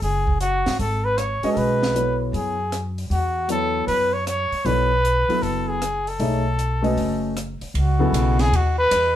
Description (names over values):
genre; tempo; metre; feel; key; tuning
modal jazz; 155 BPM; 4/4; swing 65% on 8ths; C# minor; A4 = 442 Hz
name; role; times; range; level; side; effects
breathy trumpet; melody; 0.0-9.2 s; F#4 to C#5; -22 LUFS; equal; none
upright bass; bass; 0.0-9.2 s; F#1 to G#2; -24 LUFS; equal; none
compact cocktail drum kit; drums; 0.0-9.0 s; hi-hat, kick drum, ride cymbal, rim click, snare drum; -31 LUFS; right 2 dB; none
dark concert grand piano; accompaniment; 1.4-8.5 s; C#3 to E5; -24 LUFS; left 1 dB; none
room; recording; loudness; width
moderate studio ambience, RT60 0.5 s; band playing live in one room; -19 LUFS; side -11 dB against mid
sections
0.0-7.7 A section; 7.7-9.2 B section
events
trumpet solo 7.7-9.2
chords
0.0 C#9sus4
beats
| 0.01 0.40 0.79 1.17 | 1.56 1.95 2.33 2.72 | 3.10 3.49 3.88 4.26 | 4.65 5.04 5.42 5.81 | 6.20 6.59 6.97 7.36 | 7.75 8.13 8.52 8.91